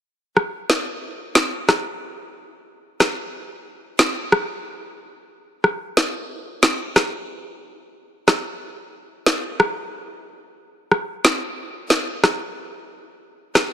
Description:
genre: dancehall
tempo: 91 BPM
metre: 4/4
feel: straight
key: none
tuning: none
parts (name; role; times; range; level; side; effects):
- electronic rim click and snare drum; drums; 0.4-13.7 s; none; -18 LUFS; equal; none
room: light reverb, digital ambience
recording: dense, heavily limited modern master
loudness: -18 LUFS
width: side -10 dB against mid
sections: 0.0-10.3 A section; 10.3-13.7 B section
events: none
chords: none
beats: 0.37 1.02 1.68 | 2.34 3.00 3.66 4.32 | 4.98 5.64 6.30 6.96 | 7.62 8.28 8.94 9.60 | 10.26 10.91 11.57 12.23 | 12.89 13.55

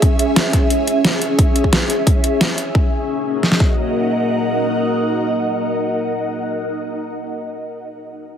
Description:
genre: dark technical drum and bass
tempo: 176 BPM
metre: 4/4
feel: straight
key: Eb phrygian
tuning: A4 = 440 Hz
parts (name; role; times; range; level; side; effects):
- deep dark ambient pad; sustained chords; 0.0-6.2 s; Bb3 to Fb5; -23 LUFS; left 1 dB; chorus, built-in reverb, sidechain pumping
- dubstep drum kit; drums; 0.0-3.7 s; kick drum, snare drum; -15 LUFS; equal; overdrive
- dubstep drum kit; drums; 0.0-2.6 s; hi-hat, snare drum; -18 LUFS; equal; overdrive
- ethereal airy pad; texture; 0.0-6.2 s; Db4 to Gb5; -20 LUFS; equal; ensemble chorus, built-in reverb, phaser, sidechain pumping
room: moderate lush hall reverb, RT60 1.9 s, digital ambience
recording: heavily compressed radio sound, multiband compression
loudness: -15 LUFS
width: side -8 dB against mid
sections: 0.0-2.8 A section; 2.8-5.5 B section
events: none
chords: 0.0 Dbm; 2.8 Ebm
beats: | 0.02 0.36 0.70 1.04 | 1.39 1.73 2.07 2.41 | 2.75 3.09 3.43 3.77 | 4.11 4.45 4.79 5.14

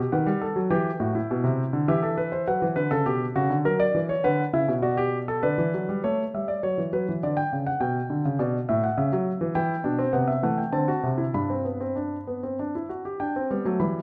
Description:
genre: classical, baroque-style 3-part fugue for grand piano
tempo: 102 BPM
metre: 3/4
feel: straight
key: G major from 9.6 s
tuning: A4 = 442 Hz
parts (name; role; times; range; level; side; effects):
- warm concert grand piano; solo; 0.0-14.0 s; G2 to B5; -26 LUFS; equal; none
room: wet recital hall reverb, RT60 1.5 s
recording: none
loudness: -26 LUFS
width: mono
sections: 0.0-6.0 A section; 6.0-13.2 B section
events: none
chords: 0.1 B7/D#; 0.7 Em; 2.5 Bm; 3.7 F#7; 4.3 Bm; 5.4 Bm/D; 6.0 A7; 7.2 D; 7.8 G/B; 9.0 C#madd11; 9.6 Em; 10.1 Am/C; 10.7 D7; 11.3 G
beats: 0.13 | 0.72 1.30 1.89 | 2.48 3.06 3.66 | 4.25 4.84 5.44 | 6.04 6.63 7.21 | 7.80 8.38 8.97 | 9.56 10.15 10.74 | 11.35 11.97 12.59 | 13.20 13.80

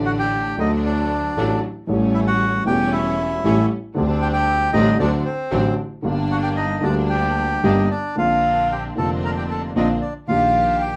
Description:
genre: tango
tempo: 115 BPM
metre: 4/4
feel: rubato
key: G harmonic minor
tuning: A4 = 441 Hz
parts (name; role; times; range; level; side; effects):
- dark upright piano; accompaniment; 0.0-11.0 s; E1 to A4; -23 LUFS; equal; none
- clear studio string section; stabs; 0.0-11.0 s; D3 to G4; -30 LUFS; equal; none
- clear double bass; bass; 0.0-11.0 s; E1 to D2; -30 LUFS; equal; none
- bandoneon; melody; 0.1-11.0 s; C4 to Bb5; -24 LUFS; equal; none
room: wet studio reverb, RT60 0.5 s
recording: rough home demo mix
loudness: -20 LUFS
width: mono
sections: 0.0-8.2 A section; 8.2-11.0 B section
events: none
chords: 0.0 D; 1.9 A7; 4.0 D7sus4; 5.0 D7; 6.0 Gm; 8.2 Bbadd9; 10.3 Ebmaj7/Bb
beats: 0.32 0.85 1.37 | 1.89 2.41 2.93 3.44 | 3.96 4.48 5.00 5.52 | 6.04 6.57 7.10 7.64 | 8.18 8.71 9.24 9.77 | 10.29 10.81

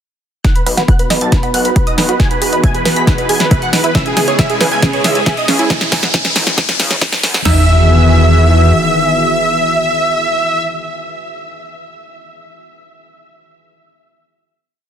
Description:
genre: uplifting trance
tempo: 137 BPM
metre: 4/4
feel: straight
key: E major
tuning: A4 = 440 Hz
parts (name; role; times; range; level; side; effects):
- dense compressed supersaw; melody; 0.4-10.6 s; G#4 to B5; -17 LUFS; equal; sidechain pumping, low-pass filter, digital delay
- wide unison pluck; second line; 0.4-10.6 s; G#5 to B6; -26 LUFS; right 1 dB; analog chorus, sidechain pumping, digital delay
- lush unison pad; sustained chords; 0.4-10.6 s; C#3 to G#4; -19 LUFS; left 1 dB; chorus, sidechain pumping
- wide unison pluck; arpeggios; 0.4-7.7 s; C#4 to B5; -21 LUFS; right 4 dB; sidechain pumping, digital delay
- punchy analog drum machine; drums; 0.4-7.6 s; crash cymbal, kick drum, snare drum; -14 LUFS; equal; none
- punchy analog drum machine; drums; 0.4-7.4 s; hi-hat, snare drum; -17 LUFS; equal; none
- riser and impact; sound effects; 2.8-10.7 s; none; -22 LUFS; equal; none
- gritty driven synth bass; bass; 0.7-8.7 s; B1 to F#2; -14 LUFS; equal; sidechain pumping, high-pass filter
room: light reverb, digital ambience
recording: dense, heavily limited modern master, high-pass filter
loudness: -10 LUFS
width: side -9 dB against mid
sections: 0.4-7.5 build; 7.5-11.0 final chord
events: build-up 0.4-7.5; drum fill 0.4-7.5; filter sweep on supersaw synth 0.4-5.7; filter sweep on synth pluck 0.4-5.7; filter sweep 0.4-7.5; riser 2.8-7.5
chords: 0.4 B; 2.2 Emaj7; 4.0 C#m7; 5.7 F#5; 7.5 Emaj7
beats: | 0.45 0.88 1.32 1.76 | 2.20 2.64 3.07 3.51 | 3.95 4.39 4.83 5.26 | 5.70 6.14 6.58 7.01 | 7.45 7.89 8.33 8.77 | 9.21 9.64 10.08 10.52

